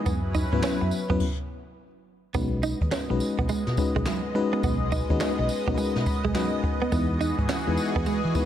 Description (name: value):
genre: R&B, new jack swing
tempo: 105 BPM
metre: 4/4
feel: swing 63% on 16ths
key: B major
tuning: A4 = 439 Hz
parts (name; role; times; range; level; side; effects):
- FM electric piano with auto-pan; accompaniment; 0.0-8.5 s; F#3 to B5; -29 LUFS; left 4 dB; none
- lush unison pad; sustained chords; 0.0-8.5 s; E3 to D#5; -32 LUFS; equal; chorus, phaser
- direct-recorded clean electric guitar; riff; 0.0-8.4 s; F#3 to D#4; -31 LUFS; right 7 dB; analog chorus
- vintage muted fingered electric bass; bass; 0.1-8.3 s; B1 to E3; -28 LUFS; equal; none
- jazz brush drum kit; drums; 0.1-8.5 s; crash cymbal, handclaps, hi-hat, kick drum, snare drum, tambourine; -29 LUFS; equal; none
room: light reverb, small room ambience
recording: none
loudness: -23 LUFS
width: side -10 dB against mid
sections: 0.0-2.3 A section; 2.3-8.5 A section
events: stop 1.2-2.3; FM electric piano fill 5.8-6.9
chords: 0.1 F#7sus4; 2.3 B69; 6.9 Emaj7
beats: | 0.06 0.63 1.20 1.77 | 2.35 2.92 3.49 4.06 | 4.63 5.20 5.78 6.35 | 6.92 7.49 8.06